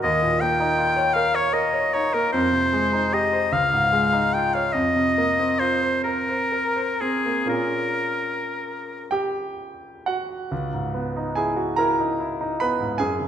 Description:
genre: classical, impressionist duo for oboe and grand piano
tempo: 36-53 BPM (dotted quarters)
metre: 6/8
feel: rubato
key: Bb dorian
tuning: A4 = 440 Hz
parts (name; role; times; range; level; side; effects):
- clear oboe; melody; 0.0-9.1 s; Ab4 to G5; -21 LUFS; left 2 dB; none
- clear concert grand piano; accompaniment; 0.0-13.3 s; Db2 to B5; -23 LUFS; right 1 dB; none
room: wet recital hall reverb, RT60 1.5 s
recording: none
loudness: -20 LUFS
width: side -9 dB against mid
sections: 0.0-10.5 A section; 10.5-13.3 B section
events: none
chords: 0.0 Eb9; 2.3 Fm9; 3.5 Dbadd9; 4.8 F7sus4; 7.5 Bbm7; 10.5 C#m11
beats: | 0.03 1.16 | 2.34 3.53 | 4.75 6.05 | 7.50 9.10 | 10.51 11.76 | 12.99

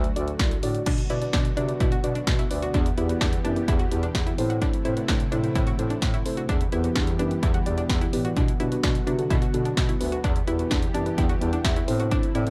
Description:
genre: synth-pop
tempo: 128 BPM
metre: 4/4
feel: straight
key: E minor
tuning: A4 = 440 Hz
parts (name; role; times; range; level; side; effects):
- string machine, cellos; sustained chords; 0.0-12.5 s; C3 to G4; -35 LUFS; equal; ensemble chorus
- breathy bass clarinet; bass; 0.0-12.5 s; C2 to C3; -31 LUFS; equal; none
- punchy analog drum machine; drums; 0.0-12.5 s; crash cymbal, hi-hat, kick drum, snare drum; -28 LUFS; equal; dub echo
- muted felt-like synth keys; accompaniment; 0.2-12.5 s; B3 to A5; -31 LUFS; equal; chorus, dub echo
- analog pluck; arpeggios; 0.9-12.5 s; D4 to F#4; -36 LUFS; equal; chorus, dub echo
room: light reverb, digital ambience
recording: echo-heavy mix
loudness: -24 LUFS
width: mono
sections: 0.9-12.5 A section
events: synth keys fill 10.7-12.1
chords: 0.0 D; 0.9 Bm; 2.7 Em; 4.4 Am; 6.5 Em; 8.4 Bm; 10.2 Em; 11.9 Am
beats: 0.40 | 0.87 1.33 1.80 2.27 | 2.74 3.21 3.68 4.15 | 4.62 5.08 5.55 6.02 | 6.49 6.96 7.43 7.90 | 8.37 8.83 9.30 9.77 | 10.24 10.71 11.18 11.65 | 12.12

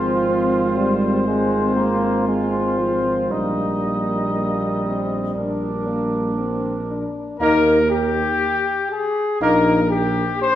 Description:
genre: classical, brass quintet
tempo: 60 BPM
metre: 4/4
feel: straight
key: Eb major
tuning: A4 = 441 Hz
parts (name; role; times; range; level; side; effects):
- mellow cornet; melody; 0.0-10.6 s; G4 to Eb5; -23 LUFS; left 2 dB; none
- warm trumpet; second line; 0.0-9.8 s; D4 to Bb4; -27 LUFS; right 3 dB; none
- warm French horn; accompaniment; 0.0-9.8 s; Bb3 to Eb4; -25 LUFS; left 3 dB; none
- warm trombone; accompaniment; 0.0-9.8 s; F3 to Bb3; -24 LUFS; right 1 dB; none
- mellow tuba; bass; 0.0-10.2 s; Ab1 to Eb2; -23 LUFS; right 1 dB; none
room: wet recital hall reverb, RT60 1.7 s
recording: heard from further back in the room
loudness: -18 LUFS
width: side -12 dB against mid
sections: 0.0-7.4 A section; 7.4-10.6 B section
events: none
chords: 0.0 Fm/Ab; 3.3 Eb/Bb; 5.4 Bb; 7.4 Eb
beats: 0.30 1.28 2.28 | 3.31 4.34 5.36 6.39 | 7.41 8.40 9.41 10.42

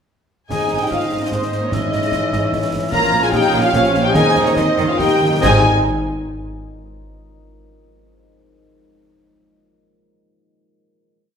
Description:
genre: cinematic, heroic adventure film score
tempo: 146 BPM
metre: 3/4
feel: uneven beats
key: Ab major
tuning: A4 = 440 Hz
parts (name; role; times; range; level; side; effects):
- rich symphonic violin section; melody; 0.5-5.7 s; C5 to Bb5; -22 LUFS; left 3 dB; none
- mellow clarinet; second line; 0.5-5.6 s; Bb4 to Db5; -28 LUFS; equal; none
- mellow hollow flute section; second line; 0.5-5.7 s; C5 to Bb5; -24 LUFS; right 1 dB; none
- warm cor anglais; second line; 0.5-5.6 s; Eb5 to F5; -24 LUFS; right 3 dB; none
- warm symphonic violin section; second line; 0.5-5.7 s; C5 to Bb5; -27 LUFS; left 2 dB; none
- warm symphonic viola section; accompaniment; 0.5-5.7 s; Ab3 to F4; -25 LUFS; right 1 dB; none
- bright trombone section; sustained chords; 0.5-5.6 s; Eb3 to Eb4; -25 LUFS; right 3 dB; none
- dark French horn section; sustained chords; 0.5-5.6 s; C4 to Bb4; -23 LUFS; left 3 dB; none
- concert harp; arpeggios; 0.5-6.8 s; Ab2 to Eb6; -26 LUFS; left 4 dB; none
- rich studio cello section; bass; 0.5-5.7 s; Ab2 to Eb3; -25 LUFS; right 3 dB; none
- rich symphonic double bass section; bass; 0.5-5.7 s; Ab1 to Eb2; -26 LUFS; right 2 dB; none
- concert snare drum, clash cymbals and concert bass drum; drums; 0.5-5.7 s; none; -29 LUFS; equal; none
- timpani; percussion; 0.5-5.6 s; Ab2 to Eb3; -24 LUFS; equal; none
room: wet recital hall reverb, RT60 1.5 s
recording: recorded in a church or concert hall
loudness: -14 LUFS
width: side -7 dB against mid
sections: 0.5-5.4 theme; 5.4-6.7 final chord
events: slowing down 2.3-5.4; timpani fill 5.0-5.4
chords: 0.5 Ab; 1.7 Dbmadd9/Ab; 2.9 Bbm; 4.2 Eb13sus4; 5.0 Eb; 5.4 Ab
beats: | 0.51 0.92 1.32 | 1.73 2.13 2.53 | 2.93 3.34 3.74 | 4.16 4.57 5.00 | 5.43 5.87 6.30

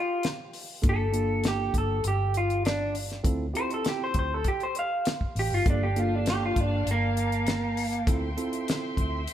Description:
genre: straight-eighth soul blues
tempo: 100 BPM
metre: 4/4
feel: straight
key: unclear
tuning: A4 = 440 Hz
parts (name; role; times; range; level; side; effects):
- electric guitar through a small old amp; melody; 0.0-8.1 s; Bb3 to F5; -28 LUFS; equal; spring reverb
- damped 70s drum kit; drums; 0.2-9.3 s; hi-hat, kick drum, snare drum; -28 LUFS; equal; none
- mellow tine electric piano; accompaniment; 0.8-9.2 s; Bb3 to A4; -32 LUFS; right 3 dB; none
- vintage muted fingered electric bass; bass; 0.8-9.3 s; G1 to D2; -30 LUFS; equal; none
- muted studio string section; sustained chords; 5.7-9.3 s; E5 to C6; -38 LUFS; left 1 dB; none
room: moderate stone room reverb, RT60 1.4 s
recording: band playing live in one room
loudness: -25 LUFS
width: side -11 dB against mid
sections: 0.0-9.3 A section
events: clean electric guitar solo 0.0-9.3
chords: 0.0 N.C.; 0.8 Gm9; 3.2 Dm9; 5.7 Gm9; 8.1 Dm9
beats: 0.23 | 0.84 1.44 2.04 2.65 | 3.25 3.85 4.45 5.06 | 5.66 6.26 6.86 7.47 | 8.07 8.67 9.27

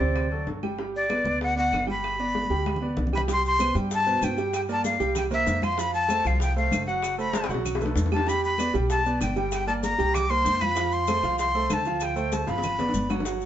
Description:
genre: Afro-Cuban jazz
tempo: 193 BPM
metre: 4/4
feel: straight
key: G major, C major from 3.3 s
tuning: A4 = 440 Hz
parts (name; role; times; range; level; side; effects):
- breathy bright jazz flute; melody; 0.0-13.1 s; D5 to D6; -26 LUFS; left 2 dB; none
- clear concert grand piano; accompaniment; 0.0-13.5 s; B2 to G5; -29 LUFS; right 4 dB; none
- upright bass; bass; 0.0-13.5 s; F#1 to G2; -30 LUFS; equal; none
- bongos; percussion; 0.0-13.4 s; none; -35 LUFS; left 4 dB; none
- claves; percussion; 0.2-13.3 s; none; -41 LUFS; right 8 dB; none
- congas; percussion; 0.2-13.5 s; none; -34 LUFS; left 1 dB; none
- maracas; percussion; 3.3-13.5 s; none; -42 LUFS; left 5 dB; none
room: moderate studio reverb, RT60 0.8 s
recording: band playing live in one room, nothing above 7.8 kHz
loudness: -23 LUFS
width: side -11 dB against mid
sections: 0.0-3.3 A section; 3.3-13.3 B section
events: drum fill 2.4-3.3, 7.3-8.3, 12.5-13.3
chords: 0.2 D7; 0.8 G; 3.3 C5; 4.5 Gm7; 5.2 C7; 5.8 F; 7.0 F#dim; 7.7 B5; 8.3 Em7; 9.5 Gm; 10.1 C5; 10.8 F6; 12.0 Dm7; 12.6 G7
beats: 0.16 0.47 | 0.79 1.10 1.41 1.73 | 2.04 2.35 2.66 2.98 | 3.29 3.60 3.91 4.22 | 4.54 4.85 5.16 5.47 | 5.78 6.09 6.41 6.72 | 7.03 7.34 7.65 7.96 | 8.28 8.59 8.90 9.21 | 9.52 9.83 10.14 10.46 | 10.77 11.08 11.39 11.70 | 12.01 12.32 12.64 12.95 | 13.26

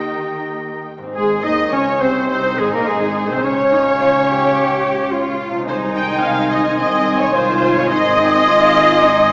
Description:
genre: classical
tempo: 107 BPM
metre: 4/4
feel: rubato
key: Ab major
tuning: A4 = 438 Hz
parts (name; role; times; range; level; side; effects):
- warm symphonic violin section; melody; 0.0-9.3 s; Ab4 to C6; -26 LUFS; equal; none
- clear oboe; second line; 0.0-9.3 s; Ab4 to Bb5; -24 LUFS; equal; none
- mellow clarinet; second line; 0.0-9.3 s; Ab3 to G4; -24 LUFS; equal; none
- mellow hollow silver concert flute; second line; 0.0-9.3 s; Ab4 to Eb6; -23 LUFS; equal; none
- warm symphonic violin section; second line; 0.0-9.3 s; Eb4 to G5; -24 LUFS; equal; none
- warm symphonic viola section; accompaniment; 0.0-9.3 s; Bb3 to G5; -17 LUFS; equal; none
- concert harp; arpeggios; 0.0-9.3 s; Ab2 to Ab4; -32 LUFS; equal; none
- rich symphonic cello section; bass; 0.0-9.3 s; Eb3 to G4; -21 LUFS; equal; none
- warm symphonic double bass section; bass; 0.0-9.3 s; Ab1 to Eb2; -28 LUFS; equal; none
- warm French horn section; sustained chords; 1.1-9.3 s; Ab3 to Eb4; -26 LUFS; equal; none
- warm trombone section; sustained chords; 1.2-9.3 s; Ab2 to Ab3; -28 LUFS; equal; none
room: wet concert hall reverb, RT60 2.3 s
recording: recorded in a church or concert hall, small speaker sound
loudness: -13 LUFS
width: side -36 dB against mid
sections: 0.0-1.2 A section; 1.2-9.3 B section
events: none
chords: 0.0 Eb; 1.2 Ab; 3.4 Eb7/Db; 5.7 Ab/C; 7.9 Ab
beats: 0.57 | 1.15 1.73 2.30 2.87 | 3.44 4.00 4.56 5.12 | 5.68 6.23 6.79 7.34 | 7.90 8.47 9.03

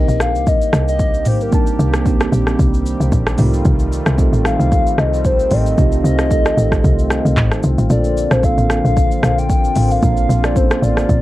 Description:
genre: amapiano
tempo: 113 BPM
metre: 4/4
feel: swing 55% on 16ths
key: unclear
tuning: A4 = 440 Hz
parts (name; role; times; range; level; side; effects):
- hollow clarinet-like synth lead; melody; 0.0-11.2 s; Bb4 to G5; -20 LUFS; left 2 dB; chorus, phaser, ping-pong delay
- mellow tine electric piano; accompaniment; 0.0-11.2 s; A3 to A5; -22 LUFS; right 5 dB; phaser
- warm analog pad; sustained chords; 0.0-11.2 s; D3 to G4; -24 LUFS; left 2 dB; chorus, sidechain pumping
- woody log drum bass; bass; 0.0-11.2 s; A1 to C2; -17 LUFS; equal; none
- afro-pop drum kit; drums; 0.1-11.2 s; handclaps, hi-hat, kick drum, rim click, shaker, toms; -17 LUFS; equal; none
room: little or no reverb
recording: worn, warbling old tape, cassette tape, warbly pitch drift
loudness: -12 LUFS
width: side -16 dB against mid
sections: 0.0-11.2 A section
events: kick muted 7.9-8.4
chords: 0.0 Cm7; 3.4 F9; 7.9 Bbmaj9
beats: 0.47 1.00 | 1.53 2.06 2.59 3.12 | 3.65 4.18 4.72 5.25 | 5.78 6.31 6.84 7.37 | 7.90 8.43 8.96 9.49 | 10.03 10.56 11.09

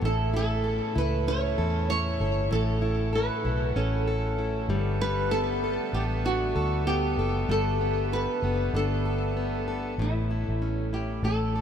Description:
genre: acoustic pop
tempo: 96 BPM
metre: 4/4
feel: swing 60% on 16ths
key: A mixolydian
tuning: A4 = 440 Hz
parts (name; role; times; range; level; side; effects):
- fingerpicked plugged-in steel-string acoustic guitar; accompaniment; 0.0-11.6 s; A2 to A4; -31 LUFS; left 3 dB; none
- pedal harmonium; sustained chords; 0.0-10.0 s; C#3 to A4; -36 LUFS; right 3 dB; none
- vintage muted fingered electric bass; bass; 0.0-11.6 s; F#1 to E2; -28 LUFS; equal; none
- flamenco guitar; melody; 0.1-11.6 s; E4 to C#5; -30 LUFS; right 2 dB; lush chorus, ping-pong delay
room: moderate huge ambient reverb, RT60 6.9 s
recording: dreamy mix soaked in reverb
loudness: -24 LUFS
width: side -8 dB against mid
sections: 0.0-10.0 A section; 10.0-11.6 B section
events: none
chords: 0.0 A; 4.7 Gadd9; 10.0 A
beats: | 0.02 0.64 1.27 1.89 | 2.51 3.13 3.76 4.38 | 5.00 5.63 6.25 6.87 | 7.50 8.12 8.74 9.36 | 9.99 10.61 11.23

